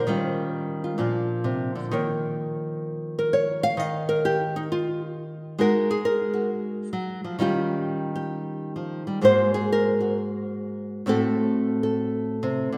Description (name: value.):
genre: solo jazz.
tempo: 131 BPM.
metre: 4/4.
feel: swing 67% on 8ths, rubato.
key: unclear.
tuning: A4 = 441 Hz.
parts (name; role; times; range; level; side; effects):
nylon-string guitar; solo; 0.0-12.8 s; Ab2 to F5; -25 LUFS; equal; none.
room: wet concert hall reverb, RT60 2.3 s.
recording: recorded in a church or concert hall.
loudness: -25 LUFS.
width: mono.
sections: 0.0-1.9 A section; 1.9-12.8 B section.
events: nylon-string guitar solo 1.9-12.8.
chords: 0.1 Eb9; 1.0 Bbadd9; 1.9 Ebsus2; 5.6 Absus2; 7.4 Eb9; 9.2 Absus2; 11.1 Am6.